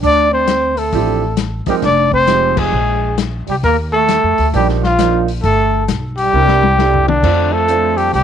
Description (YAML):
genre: jazz, small-group swing and bop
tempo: 133 BPM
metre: 4/4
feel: swing 65% on 8ths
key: F major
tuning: A4 = 440 Hz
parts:
  - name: breathy trumpet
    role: melody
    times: 0.0-8.2 s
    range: D4 to D5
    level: -15 LUFS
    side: left 3 dB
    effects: none
  - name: breathy trombone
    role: second line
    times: 0.0-8.2 s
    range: D3 to D4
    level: -20 LUFS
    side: right 12 dB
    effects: none
  - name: upright bass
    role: bass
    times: 0.0-8.2 s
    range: F1 to F2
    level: -18 LUFS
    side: equal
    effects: none
  - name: vintage drum kit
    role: drums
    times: 0.0-8.2 s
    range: crash cymbal, hi-hat, kick drum, snare drum, toms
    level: -22 LUFS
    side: left 8 dB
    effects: none
  - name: warm concert grand piano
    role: accompaniment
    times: 0.9-8.2 s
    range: F3 to C5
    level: -20 LUFS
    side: right 14 dB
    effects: none
room: moderate spring reverb, RT60 1.2 s, small room reverb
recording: 1960s-style stereo with parts hard left and right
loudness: -12 LUFS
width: side -9 dB against mid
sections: 0.0-7.2 A section; 7.2-8.2 B section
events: band accent 2.5; drum fill 6.3-7.2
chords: 0.0 Dm11; 1.8 Fm9; 2.7 Abadd9/Bb; 3.6 Ebmaj9; 5.4 Gsus2; 6.3 C9; 7.2 F6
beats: | 0.03 0.47 0.93 1.38 | 1.83 2.28 2.73 3.18 | 3.63 4.08 4.53 4.98 | 5.43 5.88 6.33 6.78 | 7.23 7.68 8.13